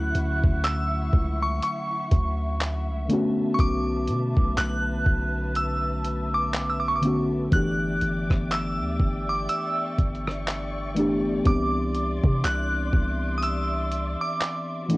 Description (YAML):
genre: contemporary R&B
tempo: 61 BPM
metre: 4/4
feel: swing 58% on 16ths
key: unclear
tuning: A4 = 442 Hz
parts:
  - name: glassy synth bell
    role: melody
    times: 0.0-14.9 s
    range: C#6 to F#6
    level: -29 LUFS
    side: right 1 dB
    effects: chorus, phaser, cassette tape
  - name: muted felt-like synth keys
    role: accompaniment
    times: 0.0-15.0 s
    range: D3 to G4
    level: -28 LUFS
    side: left 1 dB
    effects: chorus, cassette tape, plate reverb
  - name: muted studio string section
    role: sustained chords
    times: 0.0-15.0 s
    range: E4 to D6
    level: -37 LUFS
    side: left 2 dB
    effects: cassette tape
  - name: long sustained 808-style bass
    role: bass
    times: 0.0-14.2 s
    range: G1 to C3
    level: -29 LUFS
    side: equal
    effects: none
  - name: dusty soul sampler-style drum kit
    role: drums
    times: 0.1-15.0 s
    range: handclaps, hi-hat, kick drum, rim click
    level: -24 LUFS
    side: equal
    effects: cassette tape
room: light reverb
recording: home recording on cassette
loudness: -22 LUFS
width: side -21 dB against mid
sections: 0.0-15.0 A section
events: none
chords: 0.0 Dmaj9; 3.1 Bm9; 7.5 G6; 11.5 Cmaj9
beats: 0.64 1.62 2.61 | 3.59 4.57 5.56 6.54 | 7.53 8.51 9.49 10.47 | 11.46 12.44 13.43 14.41